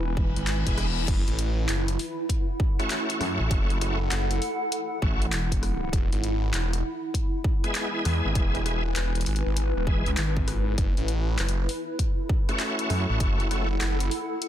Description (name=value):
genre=glitch hop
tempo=99 BPM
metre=4/4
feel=swing 64% on 16ths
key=F# minor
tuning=A4 = 439 Hz
part: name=phased detuned saw bass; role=bass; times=0.0-14.1 s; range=E1 to F#2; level=-26 LUFS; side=equal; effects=phaser
part: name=reverse cymbal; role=sound effects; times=0.2-1.1 s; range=none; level=-36 LUFS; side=left 5 dB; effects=none
part: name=granular cloud pad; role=texture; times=0.0-14.5 s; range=E4 to G#5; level=-32 LUFS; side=equal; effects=built-in reverb, sidechain pumping
part: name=electronic kick drum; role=drums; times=0.2-13.4 s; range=none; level=-25 LUFS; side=equal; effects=none
part: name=dubstep drum kit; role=drums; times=0.4-14.5 s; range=crash cymbal, handclaps, hi-hat, rim click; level=-32 LUFS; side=left 2 dB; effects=none
part: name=bright tonewheel organ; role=stabs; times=0.7-13.7 s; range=G#3 to G#4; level=-31 LUFS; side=equal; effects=overdrive, chorus vibrato, fast rotary speaker, vintage 12-bit sampler grit, sidechain pumping, ping-pong delay
room=digital ambience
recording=dense, heavily limited modern master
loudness=-24 LUFS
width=side -11 dB against mid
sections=0.0-14.5 A section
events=reverse cymbal 0.2-1.1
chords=0.0 E; 1.1 F#m7; 5.9 E; 10.8 F#m7